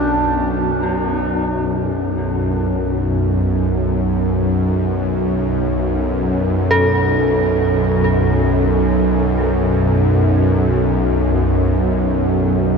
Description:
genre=dark ambient drone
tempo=free time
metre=none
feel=none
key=B minor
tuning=A4 = 441 Hz
part: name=warm duduk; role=melody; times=0.0-0.8 s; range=D4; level=-24 LUFS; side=right 1 dB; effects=tape echo
part: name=dark detuned synth bell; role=arpeggios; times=0.0-12.8 s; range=F#4 to A4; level=-23 LUFS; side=equal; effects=chorus, tape echo
part: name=bowed-like drone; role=drone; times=0.0-12.8 s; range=B1 to F#2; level=-15 LUFS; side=equal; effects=built-in reverb
part: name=bronze singing bowl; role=texture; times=0.0-12.8 s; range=none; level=barely audible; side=none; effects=none
room=wet huge ambient reverb, RT60 7.3 s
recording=faint mains hum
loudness=-15 LUFS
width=side -5 dB against mid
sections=0.0-1.3 A section; 1.3-12.8 B section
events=none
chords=0.0 Dadd9/B; 1.3 B5

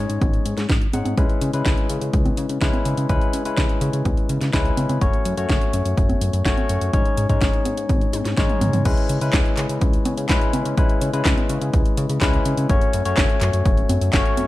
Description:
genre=italo disco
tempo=125 BPM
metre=4/4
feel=straight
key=C# minor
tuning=A4 = 440 Hz
part: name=barky tine electric piano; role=stabs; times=0.0-14.5 s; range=G#3 to F#5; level=-24 LUFS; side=left 3 dB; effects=ping-pong delay
part: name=chorused synth bass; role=bass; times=0.0-14.5 s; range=F#1 to C#3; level=-24 LUFS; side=equal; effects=tube saturation
part: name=house drum kit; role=drums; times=0.1-14.5 s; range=congas, crash cymbal, handclaps, hi-hat, snare drum, toms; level=-25 LUFS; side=equal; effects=overdrive
part: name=electronic kick drum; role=drums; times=0.2-14.2 s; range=none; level=-20 LUFS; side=equal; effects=none
room=light reverb, digital ambience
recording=dark, warm production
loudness=-18 LUFS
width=side -16 dB against mid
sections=0.0-8.9 A section; 8.9-14.5 B section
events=drum fill 8.1-8.9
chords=0.0 G#sus4; 1.2 C#m7; 5.0 F#m; 6.9 G#sus4; 8.9 C#m7; 12.7 F#m

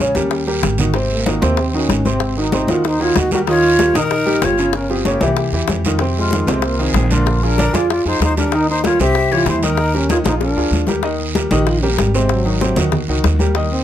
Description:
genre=Afro-Cuban jazz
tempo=190 BPM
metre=4/4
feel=straight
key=Eb mixolydian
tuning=A4 = 440 Hz
part: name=dark trombone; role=melody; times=0.0-13.8 s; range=Gb3 to G4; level=-19 LUFS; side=right 1 dB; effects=none
part: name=warm upright piano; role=accompaniment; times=0.0-13.8 s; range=C3 to Eb5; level=-20 LUFS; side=equal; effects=none
part: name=upright bass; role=bass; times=0.0-13.8 s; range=G1 to F2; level=-20 LUFS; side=equal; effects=none
part: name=bongos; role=percussion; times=0.0-13.7 s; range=none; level=-23 LUFS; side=left 8 dB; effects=none
part: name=guiro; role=percussion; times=0.0-13.8 s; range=none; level=-28 LUFS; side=right 6 dB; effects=none
part: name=congas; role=percussion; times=0.1-13.8 s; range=none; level=-22 LUFS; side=left 2 dB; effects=none
part: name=breathy jazz flute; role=second line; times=2.9-10.9 s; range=F4 to Fb5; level=-22 LUFS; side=left 4 dB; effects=none
room=light reverb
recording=close, detailed microphones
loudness=-14 LUFS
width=side -11 dB against mid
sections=0.0-11.0 A section; 11.0-13.8 B section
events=drum fill 0.0-0.9, 10.3-11.0; trombone solo 11.0-13.8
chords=0.3 Eb; 0.9 Ab7; 3.5 Eb9; 4.7 Gm7b5; 5.4 C; 6.0 Fm7; 7.3 Bb7; 8.5 Eb; 9.2 C; 9.8 Ebadd9; 10.4 Bb7; 11.0 Eb; 12.3 Ab7

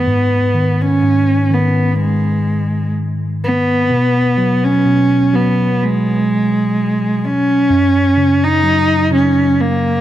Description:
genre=pop ballad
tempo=63 BPM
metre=4/4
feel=straight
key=B major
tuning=A4 = 440 Hz
part: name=dark cello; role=melody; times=0.0-10.0 s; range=G#3 to D#4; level=-14 LUFS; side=right 1 dB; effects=analog delay
part: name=barky tine electric piano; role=accompaniment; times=0.0-10.0 s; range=F#2 to F#3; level=-16 LUFS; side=equal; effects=analog delay
room=moderate plate reverb, RT60 2.5 s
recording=echo-heavy mix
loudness=-12 LUFS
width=side -12 dB against mid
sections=0.0-10.0 A section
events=none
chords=0.1 G#m; 3.9 B5; 7.7 F#5

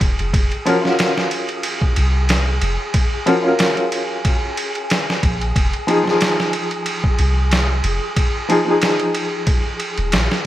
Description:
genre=trip hop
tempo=92 BPM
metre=4/4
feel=swing 55% on 16ths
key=F phrygian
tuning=A4 = 439 Hz
part: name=felt-muted upright piano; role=accompaniment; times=0.0-10.5 s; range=F3 to Bb4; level=-20 LUFS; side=left 1 dB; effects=tremolo, tape echo
part: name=soft 808-style bass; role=bass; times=0.0-10.3 s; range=Eb1 to C2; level=-18 LUFS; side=equal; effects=none
part: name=trip hop sampler-style drum kit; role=drums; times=0.0-10.4 s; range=kick drum, ride cymbal, snare drum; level=-19 LUFS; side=equal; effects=none
part: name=wind-like tuned noise texture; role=texture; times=0.0-10.5 s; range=Ab4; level=-28 LUFS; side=equal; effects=built-in reverb
room=little or no reverb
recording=vinyl crackle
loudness=-16 LUFS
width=side -14 dB against mid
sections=0.0-10.5 A section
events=none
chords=0.3 Gbmaj9/F; 5.6 Fm7

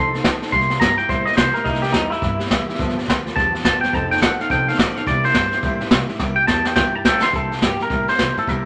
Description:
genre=rockabilly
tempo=212 BPM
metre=4/4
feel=swing 61% on 8ths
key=C mixolydian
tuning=A4 = 440 Hz
part: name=twangy electric guitar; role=melody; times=0.0-8.7 s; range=Eb4 to C6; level=-22 LUFS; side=equal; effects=spring reverb
part: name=picked steel-string acoustic guitar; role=accompaniment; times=0.0-8.7 s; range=G2 to A4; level=-29 LUFS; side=equal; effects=none
part: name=upright bass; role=bass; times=0.0-8.7 s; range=E1 to C3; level=-31 LUFS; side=equal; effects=none
part: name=jazz brush drum kit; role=drums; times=0.1-8.6 s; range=hi-hat, kick drum, snare drum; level=-22 LUFS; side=equal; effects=none
room=moderate studio reverb, RT60 0.7 s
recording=none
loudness=-19 LUFS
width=mono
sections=0.0-7.3 A section; 7.3-8.7 B section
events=clean electric guitar solo 0.0-7.3; drum fill 6.2-7.3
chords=0.0 F7; 0.5 C7; 2.8 G7; 3.9 F7; 5.1 C7

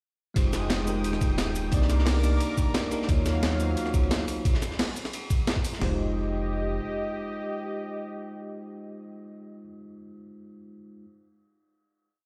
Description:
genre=liquid drum and bass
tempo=176 BPM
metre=4/4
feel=straight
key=F minor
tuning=A4 = 440 Hz
part: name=bell-like tine electric piano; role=accompaniment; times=0.3-11.1 s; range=Ab3 to D5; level=-35 LUFS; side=equal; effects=tape echo
part: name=warm analog pad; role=sustained chords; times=0.4-9.3 s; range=Gb3 to Eb6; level=-38 LUFS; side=equal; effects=chorus
part: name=sub bass with octave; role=bass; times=0.4-6.8 s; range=Eb1 to Eb2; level=-30 LUFS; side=equal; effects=none
part: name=breakbeat sampler-style drum kit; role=drums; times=0.4-5.9 s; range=crash cymbal, kick drum, snare drum, toms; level=-28 LUFS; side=equal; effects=none
part: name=breakbeat sampler-style drum kit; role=drums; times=0.4-5.7 s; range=hi-hat, shaker, snare drum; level=-34 LUFS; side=equal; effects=none
part: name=crunchy breakbeat drum kit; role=drums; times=0.4-5.8 s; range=hi-hat, ride cymbal, snare drum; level=-39 LUFS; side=equal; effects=high-pass filter on cymbals, high-pass filter on hats, high-pass filter on snare, high-pass filter on room
room=light reverb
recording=played on a big sound system in a bare room, stone room reverb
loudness=-27 LUFS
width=mono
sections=0.4-5.8 drop; 5.8-8.5 final chord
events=drop 0.4-5.8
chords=0.4 Fm9; 1.7 Cm9; 3.1 Ebm9; 4.5 N.C.; 5.8 Fm9

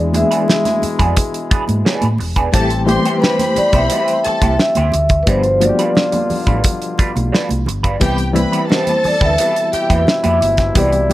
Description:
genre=lush 1970s-style soul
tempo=88 BPM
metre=4/4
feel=straight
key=C major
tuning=A4 = 440 Hz
part: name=reed electric piano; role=accompaniment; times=0.0-11.1 s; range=E3 to G#4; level=-21 LUFS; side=left 4 dB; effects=fast tremolo
part: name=clear trombone section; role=stabs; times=0.0-11.1 s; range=B2 to G4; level=-25 LUFS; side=left 2 dB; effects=none
part: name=hollow-body short-scale fingered electric bass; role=bass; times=0.0-11.1 s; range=E1 to A2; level=-19 LUFS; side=equal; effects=none
part: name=electric guitar through a small old amp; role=riff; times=0.1-11.1 s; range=G3 to C5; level=-24 LUFS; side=right 4 dB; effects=wah
part: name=damped 70s drum kit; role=drums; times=0.1-11.1 s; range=hi-hat, kick drum, snare drum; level=-17 LUFS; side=equal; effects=none
part: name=congas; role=percussion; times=0.1-11.1 s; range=none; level=-24 LUFS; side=right 4 dB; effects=none
part: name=vibraphone with soft mallets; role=melody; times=0.2-11.1 s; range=B4 to E5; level=-16 LUFS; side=equal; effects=slapback echo
part: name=dark studio violin section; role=second line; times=2.5-10.0 s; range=G4 to C6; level=-22 LUFS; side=left 1 dB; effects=none
room=little or no reverb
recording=none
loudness=-13 LUFS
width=side -15 dB against mid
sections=0.0-11.1 A section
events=none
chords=0.0 E7; 2.5 Am7; 5.3 G7; 8.0 Cmaj7

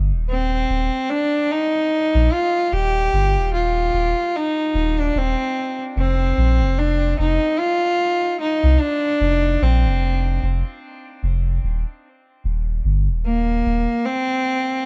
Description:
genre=trip hop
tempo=74 BPM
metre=4/4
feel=swing 59% on 16ths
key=unclear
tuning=A4 = 440 Hz
part: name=soft dub sub bass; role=bass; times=0.0-13.9 s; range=Eb1 to C2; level=-21 LUFS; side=equal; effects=none
part: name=clear cello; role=melody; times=0.3-14.9 s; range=Bb3 to G4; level=-22 LUFS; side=equal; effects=vintage 12-bit sampler grit, tape echo
room=light reverb, small room ambience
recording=worn, warbling old tape, cassette tape, warbly pitch drift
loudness=-20 LUFS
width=mono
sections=0.0-14.9 A section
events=none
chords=0.0 Cm/Eb; 6.0 F5; 12.4 Cm/Eb

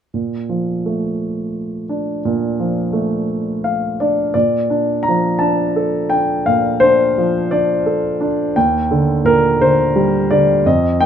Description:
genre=classical, lyrical solo piano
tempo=57 BPM (dotted quarters)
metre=6/8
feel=rubato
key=Bb major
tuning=A4 = 440 Hz
part: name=warm grand piano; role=solo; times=0.1-11.1 s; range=Eb2 to Bb5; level=-14 LUFS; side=equal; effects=none
room=moderate small room reverb, RT60 0.5 s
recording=dark, warm production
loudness=-14 LUFS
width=side -8 dB against mid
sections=0.1-4.3 A section; 4.3-11.1 B section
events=grand piano fill 3.3-4.3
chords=0.1 Bbmaj7; 8.6 Ebmaj7

